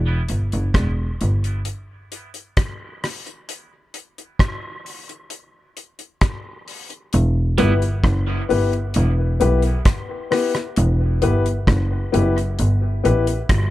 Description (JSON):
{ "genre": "dub reggae", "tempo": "66 BPM", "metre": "4/4", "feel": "straight", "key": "E minor", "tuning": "A4 = 440 Hz", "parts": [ { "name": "bright double bass", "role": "bass", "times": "0.0-1.6, 7.1-13.7 s", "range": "E1 to B1", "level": "-18 LUFS", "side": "equal", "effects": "none" }, { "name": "damped 70s drum kit", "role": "drums", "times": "0.3-13.7 s", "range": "hi-hat, kick drum, rim click", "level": "-21 LUFS", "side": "equal", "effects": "none" }, { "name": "electric guitar at the edge of break-up", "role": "accompaniment", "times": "7.6-7.7 s", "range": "G3 to E4", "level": "-28 LUFS", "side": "right 4 dB", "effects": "dub echo" }, { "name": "dark baby grand piano", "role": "stabs", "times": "7.6-13.4 s", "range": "B3 to B4", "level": "-22 LUFS", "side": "left 5 dB", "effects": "dub echo" } ], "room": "light reverb", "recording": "dark, warm production", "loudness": "-17 LUFS", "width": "side -15 dB against mid", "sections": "0.0-7.1 A section; 7.1-13.7 B section", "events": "break 0.0-7.1", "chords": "0.0 Em; 3.5 N.C.; 7.1 Em", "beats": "0.75 1.66 2.57 | 3.48 4.39 5.31 6.22 | 7.13 8.04 8.95 9.86 | 10.77 11.68 12.59 13.50" }